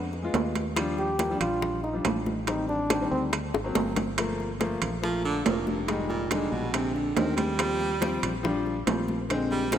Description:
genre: Afro-Cuban jazz.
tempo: 141 BPM.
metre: 4/4.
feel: straight.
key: unclear.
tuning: A4 = 438 Hz.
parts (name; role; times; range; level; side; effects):
breathy trombone; melody; 0.0-3.2 s; C4 to G4; -32 LUFS; equal; tape echo.
warm grand piano; accompaniment; 0.0-9.8 s; D3 to F4; -30 LUFS; left 2 dB; none.
fingered electric bass; bass; 0.0-9.8 s; F1 to F2; -34 LUFS; equal; none.
bongos; percussion; 0.1-9.8 s; none; -35 LUFS; left 6 dB; none.
congas; percussion; 0.1-9.8 s; none; -34 LUFS; right 1 dB; none.
timbales; percussion; 0.3-9.8 s; none; -33 LUFS; right 8 dB; none.
claves; percussion; 0.8-3.5 s; none; -47 LUFS; right 5 dB; none.
clear baritone saxophone; second line; 5.0-9.8 s; G2 to G3; -30 LUFS; right 3 dB; none.
room: moderate lush hall reverb, RT60 3.1 s.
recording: rough home demo mix.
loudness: -25 LUFS.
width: side -10 dB against mid.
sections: 0.0-4.2 A section; 4.2-9.8 A section.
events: trombone solo 0.0-4.2; drum fill 3.5-4.2; baritone saxophone solo 4.2-9.8.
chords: 0.0 Bb7(no3) (rootless); 0.8 Ebmaj9; 2.5 Am7b5; 3.3 Daug7; 4.2 Gm9; 5.9 Fm7; 6.7 Bb7; 7.6 Eb6.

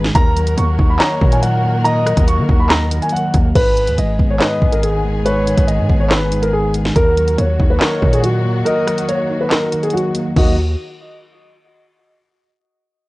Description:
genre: hip hop, drill.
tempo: 141 BPM.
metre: 4/4.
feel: half-time.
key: Eb minor.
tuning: A4 = 440 Hz.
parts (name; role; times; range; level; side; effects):
mellow tine electric piano; accompaniment; 0.0-10.6 s; Ab2 to Eb5; -21 LUFS; equal; medium stereo tremolo.
dark symphonic string section; sustained chords; 0.0-10.6 s; Eb3 to Cb5; -26 LUFS; left 1 dB; none.
hard-hitting 808-style bass; bass; 0.0-10.8 s; Ab1 to Eb3; -18 LUFS; equal; none.
drill drum kit; drums; 0.0-10.5 s; crash cymbal, handclaps, hi-hat, kick drum, rim click, snare drum; -16 LUFS; equal; none.
dark concert grand piano; melody; 0.1-10.6 s; Gb4 to Db6; -19 LUFS; equal; none.
breathy flute-like synth lead; second line; 0.1-10.6 s; Bb4 to Eb5; -23 LUFS; equal; chorus, analog delay.
room: little or no reverb.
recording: dry, gritty hardware recording, cassette tape.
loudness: -13 LUFS.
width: side -20 dB against mid.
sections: 0.0-3.6 A section; 3.6-10.4 B section; 10.4-12.1 C section.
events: break 8.7-10.4.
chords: 0.1 Ebm; 3.6 Abm; 7.0 Ebm.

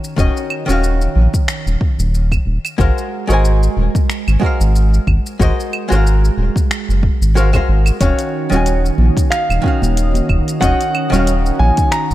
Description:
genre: sunset chillout.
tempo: 92 BPM.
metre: 4/4.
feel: swing 56% on 16ths.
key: Eb dorian.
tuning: A4 = 440 Hz.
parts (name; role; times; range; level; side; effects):
archtop guitar, miked and amplified; accompaniment; 0.0-12.1 s; Eb3 to Ab5; -20 LUFS; moving between left 5 dB and right 5 dB; auto-pan, ping-pong delay.
deep house drum kit; drums; 0.0-12.1 s; claves, finger snaps, hi-hat, shaker; -24 LUFS; right 1 dB; none.
round analog bass; bass; 0.2-12.1 s; Eb1 to Bb1; -14 LUFS; equal; none.
electronic kick drum; drums; 0.2-11.9 s; none; -17 LUFS; equal; none.
warm concert grand piano; melody; 8.0-12.1 s; Db5 to Bb5; -20 LUFS; right 1 dB; ping-pong delay.
lush unison pad; sustained chords; 8.0-12.1 s; Eb3 to Eb5; -22 LUFS; right 1 dB; chorus.
congas; percussion; 8.5-11.7 s; none; -24 LUFS; right 4 dB; none.
room: little or no reverb.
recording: dark, warm production.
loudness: -13 LUFS.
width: side -15 dB against mid.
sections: 0.0-12.1 A section.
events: none.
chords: 0.0 Ebm9; 2.8 Ab13; 8.0 Ebm9.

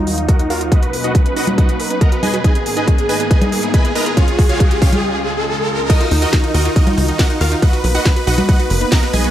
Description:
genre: uplifting trance.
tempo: 139 BPM.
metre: 4/4.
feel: straight.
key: Eb minor.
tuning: A4 = 440 Hz.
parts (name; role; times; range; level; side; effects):
supersaw chords; melody; 0.0-9.3 s; Eb4 to Cb6; -20 LUFS; equal; sidechain pumping, low-pass filter, digital delay.
lush unison pad; sustained chords; 0.0-9.3 s; Db2 to Bb4; -24 LUFS; equal; chorus, phaser, vintage 12-bit sampler grit, sidechain pumping.
wide unison pluck; arpeggios; 0.0-9.3 s; Db4 to A#4; -26 LUFS; right 4 dB; sidechain pumping, tape echo.
riser; sound effects; 0.9-5.9 s; none; -24 LUFS; equal; none.
house drum kit; drums; 0.1-9.3 s; congas, crash cymbal, hi-hat, snare drum; -22 LUFS; equal; sidechain pumping on hats, sidechain pumping on perc, sidechain pumping on cymbals.
electronic kick drum; drums; 0.3-9.0 s; none; -13 LUFS; equal; none.
analog pluck; second line; 5.9-9.3 s; Eb4 to A#5; -25 LUFS; left 2 dB; chorus, sidechain pumping, tape echo.
tight sequencer bass; bass; 6.1-9.3 s; F#1 to Eb2; -16 LUFS; equal; sidechain pumping.
room: light reverb, digital ambience.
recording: none.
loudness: -12 LUFS.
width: side -12 dB against mid.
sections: 0.0-5.9 A section; 5.9-9.3 B section.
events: build-up 0.0-5.9; filter sweep on supersaw synth 0.0-5.9; filter sweep on synth pluck 0.0-5.9; riser 0.9-5.9; drum fill 2.4-5.0; break 5.0-5.9; drop 5.9-9.3.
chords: 0.0 Ebmadd9; 0.7 Bmaj7; 2.4 Abmadd9; 4.2 Db; 5.9 Ebmadd9; 7.6 Bmaj7.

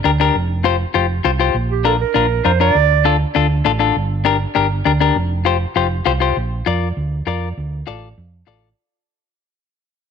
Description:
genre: latin, cumbia.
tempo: 200 BPM.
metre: 4/4.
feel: straight.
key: unclear.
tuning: A4 = 440 Hz.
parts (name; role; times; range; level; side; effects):
semi-hollow electric guitar; accompaniment; 0.0-8.7 s; D4 to D5; -17 LUFS; left 9 dB; none.
hollow-body short-scale fingered electric bass; bass; 0.0-8.7 s; F1 to F2; -19 LUFS; right 2 dB; none.
breathy clarinet; melody; 1.7-3.2 s; G4 to D5; -17 LUFS; right 14 dB; none.
room: light reverb, small room ambience.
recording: 1960s-style stereo with parts hard left and right.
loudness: -14 LUFS.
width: side -7 dB against mid.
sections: 0.0-6.4 A section; 6.4-8.8 B section.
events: fade-out 6.4-8.8.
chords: 0.4 Fsus2; 1.6 Bb; 2.8 Dm; 4.0 Gm; 5.2 Fsus2; 6.4 Bb; 7.6 Dm.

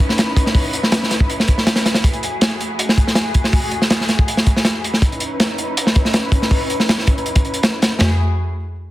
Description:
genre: drum and bass, jungle.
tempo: 161 BPM.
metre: 4/4.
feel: straight.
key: F# minor.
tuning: A4 = 440 Hz.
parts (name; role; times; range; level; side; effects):
muted studio string section; sustained chords; 0.0-8.2 s; A3 to B4; -24 LUFS; left 1 dB; low-pass filter.
crunchy breakbeat drum kit; drums; 0.0-8.1 s; hi-hat, kick drum, ride cymbal, snare drum, toms; -15 LUFS; equal; none.
room: light reverb.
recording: dense, heavily limited modern master.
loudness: -14 LUFS.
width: side -16 dB against mid.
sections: 0.0-8.0 A section.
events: filter sweep on string section 0.0-8.0.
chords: 0.0 C#m9; 2.0 F#m9; 5.0 C#m9; 8.0 F#m9.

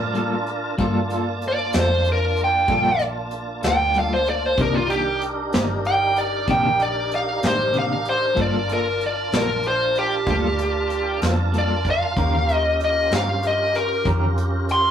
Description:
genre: slow blues.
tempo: 63 BPM (dotted quarters).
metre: 12/8.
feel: straight.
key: G minor.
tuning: A4 = 440 Hz.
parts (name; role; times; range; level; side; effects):
clean electric guitar; accompaniment; 0.0-14.3 s; C3 to Bb4; -26 LUFS; left 2 dB; tremolo.
tonewheel organ; sustained chords; 0.0-14.9 s; Bb3 to A5; -28 LUFS; right 2 dB; slow rotary speaker, chorus vibrato.
vintage muted fingered electric bass; bass; 0.0-14.9 s; G1 to A2; -26 LUFS; equal; none.
vintage brush drum kit; drums; 0.1-14.8 s; hi-hat, kick drum, snare drum; -26 LUFS; right 1 dB; none.
smooth overdriven lead guitar; melody; 1.5-14.9 s; F4 to C6; -20 LUFS; equal; none.
room: moderate studio reverb, RT60 0.6 s.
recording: rough rehearsal-room recording, tube saturation.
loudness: -18 LUFS.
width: side -9 dB against mid.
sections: 0.0-14.9 A section.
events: lead electric guitar solo 0.0-14.9.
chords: 0.0 Gm9; 4.6 Cm9; 8.4 Gm9; 12.2 Eb7.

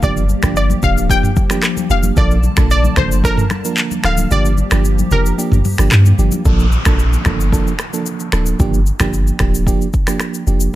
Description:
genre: afrobeats.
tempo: 112 BPM.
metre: 4/4.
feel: straight.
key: unclear.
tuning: A4 = 441 Hz.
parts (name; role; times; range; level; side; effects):
analog pluck; melody; 0.0-6.2 s; Bb4 to G5; -21 LUFS; left 2 dB; chorus.
FM electric piano with tremolo; accompaniment; 0.0-10.7 s; F3 to Bb4; -21 LUFS; right 5 dB; none.
hollow soft pad; sustained chords; 0.0-6.4 s; D3 to A5; -25 LUFS; left 3 dB; ensemble chorus.
punchy sub bass; bass; 0.0-10.7 s; D1 to G2; -14 LUFS; equal; none.
afro-pop drum kit; drums; 0.0-10.7 s; finger snaps, handclaps, hi-hat, kick drum, rim click, shaker, toms; -17 LUFS; equal; none.
congas; percussion; 0.0-6.4 s; none; -25 LUFS; left 4 dB; none.
downlifter; sound effects; 6.5-10.7 s; none; -27 LUFS; left 1 dB; none.
room: little or no reverb.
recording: none.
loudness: -12 LUFS.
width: side -15 dB against mid.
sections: 0.0-6.5 A section; 6.5-10.8 B section.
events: kick muted 4.3-6.5.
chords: 0.0 Gm7; 2.2 Bbmaj7; 4.3 Gm7; 6.5 Bbmaj7; 8.6 Gm7.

